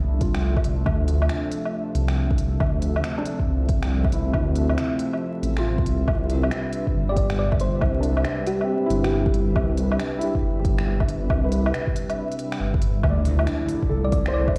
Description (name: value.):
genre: future garage.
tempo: 138 BPM.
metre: 4/4.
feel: swing 64% on 16ths.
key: D dorian.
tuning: A4 = 440 Hz.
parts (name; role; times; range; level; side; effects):
felt-muted upright piano; accompaniment; 0.0-14.6 s; C4 to D5; -34 LUFS; equal; sidechain pumping, tape echo.
airy breathy pad; sustained chords; 0.0-14.6 s; C3 to E5; -31 LUFS; equal; chorus, sidechain pumping.
swelling detuned saw bass; bass; 0.0-14.6 s; G1 to D2; -25 LUFS; equal; sidechain pumping.
electronic kick drum; drums; 0.2-14.5 s; none; -27 LUFS; equal; none.
organic electronic drum kit; drums; 0.2-14.6 s; finger snaps, hi-hat, woodblock; -33 LUFS; equal; overdrive.
thumb-piano-like synth pluck; melody; 7.1-9.6, 14.0-14.6 s; G4 to D5; -30 LUFS; equal; chorus, tape echo.
impact; sound effects; 13.0-14.6 s; none; -34 LUFS; equal; none.
room: light reverb, digital ambience.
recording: played on a big sound system in a bare room, stone room reverb, vinyl crackle.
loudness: -23 LUFS.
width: mono.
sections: 0.0-13.0 A section; 13.0-14.6 B section.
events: impact 13.0-14.6.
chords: 0.0 Dm9; 6.1 Cmaj9; 13.0 Dm9.